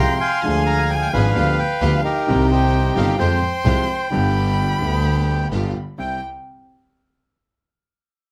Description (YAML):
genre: tango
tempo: 130 BPM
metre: 4/4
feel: rubato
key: C minor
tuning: A4 = 440 Hz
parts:
  - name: bandoneon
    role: melody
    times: 0.0-6.2 s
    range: Eb4 to C6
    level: -24 LUFS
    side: equal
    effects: none
  - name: rich violin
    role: second line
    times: 0.0-6.2 s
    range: F5 to C6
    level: -29 LUFS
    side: equal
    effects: slapback echo
  - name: clear concert grand piano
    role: accompaniment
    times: 0.0-6.2 s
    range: G1 to Ab4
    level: -26 LUFS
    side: equal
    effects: none
  - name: clear symphonic string section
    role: stabs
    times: 0.0-6.2 s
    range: Ab3 to Ab4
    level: -34 LUFS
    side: equal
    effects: none
  - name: rich double bass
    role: bass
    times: 0.0-6.2 s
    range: G1 to F2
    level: -22 LUFS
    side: equal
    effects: none
room: light reverb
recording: close, detailed microphones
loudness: -19 LUFS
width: mono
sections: 0.0-6.0 A section; 6.0-7.8 B section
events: none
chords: 0.4 Ddim; 1.4 G7/D; 2.3 Cm; 3.2 Fmadd9; 4.1 G; 5.5 G7; 6.0 C